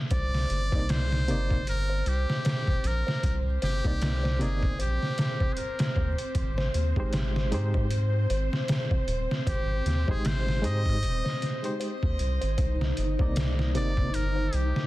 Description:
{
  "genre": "trip hop",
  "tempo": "77 BPM",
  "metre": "4/4",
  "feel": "swing 57% on 16ths",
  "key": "C minor",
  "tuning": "A4 = 439 Hz",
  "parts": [
    { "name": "trumpet with metal mute", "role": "melody", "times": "0.1-14.9 s", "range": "G4 to Eb5", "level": "-36 LUFS", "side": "equal", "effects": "tape echo" },
    { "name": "string machine, cellos", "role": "sustained chords", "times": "0.1-14.9 s", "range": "Eb4 to C5", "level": "-37 LUFS", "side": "equal", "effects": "ensemble chorus" },
    { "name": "music box", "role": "arpeggios", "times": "0.1-14.5 s", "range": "C5", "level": "-37 LUFS", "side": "equal", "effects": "vintage 12-bit sampler grit, tape echo" },
    { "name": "round analog bass", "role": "bass", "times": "0.1-14.7 s", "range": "Eb1 to Ab2", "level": "-28 LUFS", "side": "equal", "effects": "tube saturation" },
    { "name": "trip hop sampler-style drum kit", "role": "drums", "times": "0.1-14.9 s", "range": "hi-hat, kick drum, snare drum", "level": "-29 LUFS", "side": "equal", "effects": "overdrive, low-pass filter on snare, low-pass filter on hats, low-pass filter on kick, low-pass filter on room" },
    { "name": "barky reed electric piano", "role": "accompaniment", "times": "0.7-14.1 s", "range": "C3 to D5", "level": "-34 LUFS", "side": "equal", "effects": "overdrive, fast tremolo, harmonic tremolo, tape echo" }
  ],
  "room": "digital ambience",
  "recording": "dense, heavily limited modern master, vinyl crackle",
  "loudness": "-25 LUFS",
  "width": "side -17 dB against mid",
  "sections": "0.1-14.9 A section",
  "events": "none",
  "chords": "0.1 Cm9; 6.3 Abmaj7; 12.6 Cm9"
}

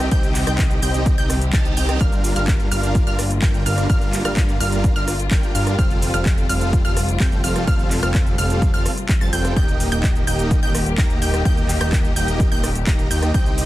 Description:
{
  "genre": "EDM, festival progressive house",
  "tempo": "127 BPM",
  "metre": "4/4",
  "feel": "straight",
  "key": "unclear",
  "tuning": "A4 = 439 Hz",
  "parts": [
    { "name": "warm studio string section", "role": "sustained chords", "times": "0.0-13.7 s", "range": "C3 to G4", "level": "-29 LUFS", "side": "left 2 dB", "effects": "sidechain pumping" },
    { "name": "wide unison pluck", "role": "arpeggios", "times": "0.0-13.7 s", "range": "F6 to Bb6", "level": "-29 LUFS", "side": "right 1 dB", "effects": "sidechain pumping, dub echo" },
    { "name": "supersaw chords", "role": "riff", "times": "0.0-13.7 s", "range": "G3 to Bb5", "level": "-25 LUFS", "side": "right 1 dB", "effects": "sidechain pumping, dub echo" },
    { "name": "fat analog bass", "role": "bass", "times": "0.0-13.7 s", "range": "Eb1 to G2", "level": "-23 LUFS", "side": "equal", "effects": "sidechain pumping" },
    { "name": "house drum kit", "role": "drums", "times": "0.0-13.7 s", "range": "handclaps, hi-hat, rim click, shaker", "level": "-27 LUFS", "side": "equal", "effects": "overdrive" },
    { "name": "electronic kick drum", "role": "drums", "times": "0.1-13.4 s", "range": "none", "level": "-19 LUFS", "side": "equal", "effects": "overdrive" },
    { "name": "reverse cymbal", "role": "sound effects", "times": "1.3-2.0 s", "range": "none", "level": "-32 LUFS", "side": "right 8 dB", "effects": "none" }
  ],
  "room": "little or no reverb",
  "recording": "dense, heavily limited modern master",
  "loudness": "-16 LUFS",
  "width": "side -16 dB against mid",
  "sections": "0.0-13.7 A section",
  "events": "reverse cymbal 1.3-2.0",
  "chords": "0.0 Cm; 2.0 Gm7; 5.8 Fadd9; 9.6 Eb"
}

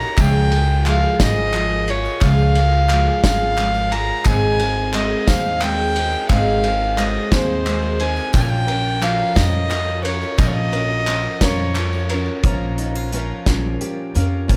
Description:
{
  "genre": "indie folk with a building arrangement",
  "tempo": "59 BPM (dotted quarters)",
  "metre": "6/8",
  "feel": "straight",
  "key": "unclear",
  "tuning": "A4 = 442 Hz",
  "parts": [
    { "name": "warm fiddle", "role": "melody", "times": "0.0-12.2 s", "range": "C5 to Bb5", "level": "-24 LUFS", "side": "equal", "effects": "tape echo" },
    { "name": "picked twelve-string acoustic guitar", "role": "accompaniment", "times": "0.0-14.6 s", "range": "Ab2 to Bb4", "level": "-26 LUFS", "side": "equal", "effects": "none" },
    { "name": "group handclap", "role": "percussion", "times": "0.0-12.4 s", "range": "none", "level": "-33 LUFS", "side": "equal", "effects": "none" },
    { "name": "tambourine", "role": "percussion", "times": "0.0-12.0 s", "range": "none", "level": "-43 LUFS", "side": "equal", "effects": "none" },
    { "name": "upright bass", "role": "bass", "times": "0.2-14.6 s", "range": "Ab1 to F2", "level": "-23 LUFS", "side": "equal", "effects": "none" },
    { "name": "loose indie drum kit", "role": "drums", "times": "0.2-14.6 s", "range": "hi-hat, kick drum, ride cymbal, snare drum", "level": "-24 LUFS", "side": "equal", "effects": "none" },
    { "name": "fingerpicked steel-string acoustic guitar", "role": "accompaniment", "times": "12.4-14.6 s", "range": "Bb2 to G4", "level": "-30 LUFS", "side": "equal", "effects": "none" }
  ],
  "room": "light reverb",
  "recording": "none",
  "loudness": "-18 LUFS",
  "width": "mono",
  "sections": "0.0-12.4 A section; 12.4-14.6 B section",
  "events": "none",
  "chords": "0.2 Db; 4.3 Ab; 8.3 Bbm"
}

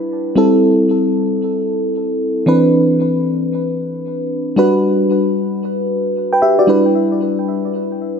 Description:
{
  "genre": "R&B",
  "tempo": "free time",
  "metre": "none",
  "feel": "none",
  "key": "E minor",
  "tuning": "A4 = 441 Hz",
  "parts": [
    { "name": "mellow FM electric piano", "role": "solo", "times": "0.0-8.2 s", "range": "E3 to G5", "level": "-13 LUFS", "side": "equal", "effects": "chorus, ping-pong delay" }
  ],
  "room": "moderate lush hall reverb, RT60 2.8 s",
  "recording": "none",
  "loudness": "-13 LUFS",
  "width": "side -6 dB against mid",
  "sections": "0.0-6.7 A section; 6.7-8.2 B section",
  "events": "none",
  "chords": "0.4 Am7; 2.5 Cmaj9; 4.6 Gmaj7"
}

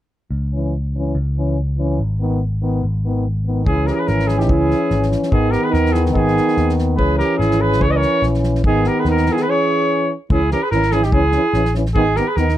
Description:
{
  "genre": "balkan folk, Balkan brass band",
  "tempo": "145 BPM",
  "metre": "2/4",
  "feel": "swing 56% on 16ths",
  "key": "C# dorian sharp4",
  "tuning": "A4 = 444 Hz",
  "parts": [
    { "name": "picked electric bass", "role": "bass", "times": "0.3-12.6 s", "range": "G#1 to D#2", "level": "-19 LUFS", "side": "equal", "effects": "none" },
    { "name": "mellow French horn", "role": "accompaniment", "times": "0.5-12.5 s", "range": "B3 to C#4", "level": "-22 LUFS", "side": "left 6 dB", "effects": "none" },
    { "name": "warm euphonium", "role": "accompaniment", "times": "0.5-12.5 s", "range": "D#3 to E3", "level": "-24 LUFS", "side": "right 5 dB", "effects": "none" },
    { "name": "clear flugelhorn", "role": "melody", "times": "3.7-12.6 s", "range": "G4 to D#5", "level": "-20 LUFS", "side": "equal", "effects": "none" },
    { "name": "warm alto saxophone", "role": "second line", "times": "3.7-12.6 s", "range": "D#4 to B4", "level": "-23 LUFS", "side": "right 6 dB", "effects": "none" },
    { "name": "natural country drum kit", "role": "percussion", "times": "3.7-12.5 s", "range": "kick drum, snare drum", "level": "-23 LUFS", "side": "equal", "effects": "none" }
  ],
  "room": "little or no reverb",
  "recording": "dry, close 1970s-style studio recording",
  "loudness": "-15 LUFS",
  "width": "side -12 dB against mid",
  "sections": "0.3-3.7 A section; 3.7-10.3 B section; 10.3-12.6 B section",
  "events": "none",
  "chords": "0.3 C#m; 2.0 G#m; 3.7 C#m; 5.3 G#m; 7.0 C#m; 8.6 G#m; 9.5 C#m; 12.0 G#m"
}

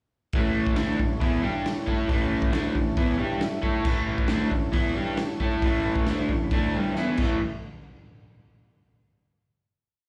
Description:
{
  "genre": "garage rock duo or trio",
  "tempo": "135 BPM",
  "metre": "4/4",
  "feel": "straight",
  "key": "A major",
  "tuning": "A4 = 442 Hz",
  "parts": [
    { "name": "combo organ", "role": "sustained chords", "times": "0.3-7.4 s", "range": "E4 to C#6", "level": "-36 LUFS", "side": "equal", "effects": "lush chorus" },
    { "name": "raw garage drum kit", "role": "drums", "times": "0.3-7.3 s", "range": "crash cymbal, hi-hat, kick drum, snare drum", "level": "-29 LUFS", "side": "equal", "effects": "none" },
    { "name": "crunchy overdriven guitar", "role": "riff", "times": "0.4-7.4 s", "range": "G2 to A4", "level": "-28 LUFS", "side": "equal", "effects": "slapback echo" }
  ],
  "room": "small room ambience",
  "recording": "live gig heard through the venue's PA, club reverb",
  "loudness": "-25 LUFS",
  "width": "mono",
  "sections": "0.3-7.4 riff; 7.4-9.2 final hit",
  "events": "transistor combo organ fill 3.2-3.9, 6.1-7.4; drum fill 7.0-7.4",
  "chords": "0.3 A; 7.4 N.C."
}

